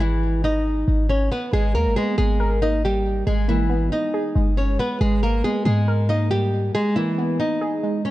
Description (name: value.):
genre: hip hop, trap.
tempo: 138 BPM.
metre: 4/4.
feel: half-time.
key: G# harmonic minor.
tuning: A4 = 439 Hz.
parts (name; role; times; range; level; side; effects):
flamenco guitar; melody; 0.0-8.1 s; E3 to D#5; -22 LUFS; equal; low-pass filter.
clean 808-style bass; bass; 0.0-6.7 s; G1 to G#2; -21 LUFS; equal; none.
warbly dusty pluck; accompaniment; 1.5-8.1 s; G#3 to A#4; -26 LUFS; right 1 dB; chorus, low-pass filter.
room: studio reverb.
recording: none.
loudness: -19 LUFS.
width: side -16 dB against mid.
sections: 0.0-8.1 A section.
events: none.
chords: 0.0 G#madd9.